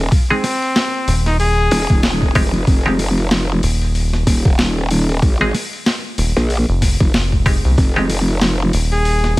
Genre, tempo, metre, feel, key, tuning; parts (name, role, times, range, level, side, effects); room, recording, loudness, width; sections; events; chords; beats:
glitch hop; 94 BPM; 4/4; swing 58% on 16ths; F minor; A4 = 440 Hz
growl bass; bass; 0.0-9.4 s; Eb1 to Bb1; -16 LUFS; equal; chorus, tube saturation
boom bap sampler-style drum kit; drums; 0.1-9.4 s; hi-hat, snare drum; -22 LUFS; left 1 dB; overdrive
electronic kick drum; drums; 0.1-9.4 s; -15 LUFS; equal; overdrive
warm trumpet; melody; 0.3-2.0, 8.9-9.4 s; C4 to Ab4; -21 LUFS; left 1 dB; dub echo
muted clav; stabs; 0.3-8.1 s; Ab3 to Ab4; -21 LUFS; right 1 dB; sidechain pumping, dub echo
rubbery square bass; bass; 1.1-9.4 s; Eb1 to C2; -16 LUFS; equal
little or no reverb; vinyl crackle; -14 LUFS; side -20 dB against mid
0.0-9.4 A section
0.0 Fm7
| 0.12 0.76 1.40 2.03 | 2.67 3.31 3.95 4.59 | 5.23 5.86 6.50 7.14 | 7.78 8.42 9.05